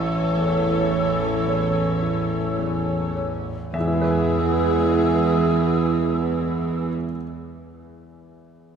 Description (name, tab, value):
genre	cinematic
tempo	51-56 BPM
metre	4/4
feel	rubato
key	E major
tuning	A4 = 442 Hz
part	warm symphonic violin section	melody	0.0-6.9 s	B3 to C#4	-32 LUFS	left 2 dB	none
part	bright flute section	second line	0.0-6.9 s	E6	-32 LUFS	left 2 dB	none
part	dark studio violin section	second line	0.0-6.9 s	G#4 to A4	-34 LUFS	equal	none
part	mellow clarinet	second line	0.0-6.9 s	G#4 to A4	-29 LUFS	left 3 dB	none
part	clear grand piano	accompaniment	0.0-8.8 s	A1 to G#5	-28 LUFS	left 1 dB	none
part	dark symphonic viola section	accompaniment	0.0-6.9 s	E3 to C#5	-29 LUFS	right 3 dB	none
part	mellow French horn section	sustained chords	0.0-6.9 s	E3 to E4	-27 LUFS	right 3 dB	none
part	warm studio double bass section	bass	0.0-6.9 s	A1 to E2	-28 LUFS	right 4 dB	none
part	warm symphonic cello section	bass	0.0-6.9 s	E3	-28 LUFS	right 4 dB	none
room	wet church reverb, RT60 2.9 s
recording	recorded in a church or concert hall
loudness	-19 LUFS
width	side -7 dB against mid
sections	0.0-3.7 A section; 3.7-8.4 B section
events	slowing down 0.0-3.7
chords	0.0 A; 3.7 E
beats	0.36 1.47 2.59 | 3.74 4.90 6.06 7.22